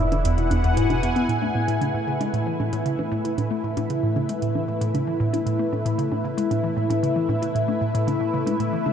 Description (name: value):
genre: ambient, sequencer-driven space music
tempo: 115 BPM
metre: 4/4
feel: straight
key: A major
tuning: A4 = 440 Hz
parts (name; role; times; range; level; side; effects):
- expressive portamento lead; melody; 0.0-0.7 s; E5; -35 LUFS; right 1 dB; chorus, tape echo
- lush unison pad; sustained chords; 0.0-8.9 s; A3 to G#5; -25 LUFS; left 2 dB; chorus, phaser
- hollow square pluck; riff; 0.0-8.9 s; E2 to E4; -24 LUFS; equal; chorus, tape echo
- warm sub bass; bass; 0.0-1.3 s; E1; -26 LUFS; equal; none
- electronic hi-hat and congas; percussion; 0.1-8.9 s; none; -35 LUFS; right 4 dB; tape echo
room: wet huge ambient reverb, RT60 7.1 s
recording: dark, warm production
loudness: -21 LUFS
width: side -8 dB against mid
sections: 0.0-1.3 A section; 1.3-8.9 B section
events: none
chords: 0.0 E; 1.3 Amaj7